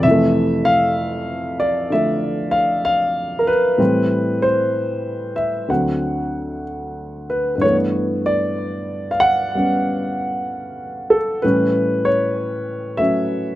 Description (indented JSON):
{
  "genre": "solo jazz",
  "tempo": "64 BPM",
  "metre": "4/4",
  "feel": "swing 66% on 8ths, rubato",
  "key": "unclear",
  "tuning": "A4 = 440 Hz",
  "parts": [
    { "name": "dark grand piano", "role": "solo", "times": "0.0-13.6 s", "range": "D2 to F#5", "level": "-17 LUFS", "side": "equal", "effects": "none" }
  ],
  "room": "little or no reverb",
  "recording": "recorded outdoors, with no room sound",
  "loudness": "-17 LUFS",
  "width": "side -15 dB against mid",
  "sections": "0.0-13.6 A section",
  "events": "none",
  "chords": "0.0 Fmaj7; 3.8 Am7; 5.7 D7; 7.6 G69; 11.4 A7"
}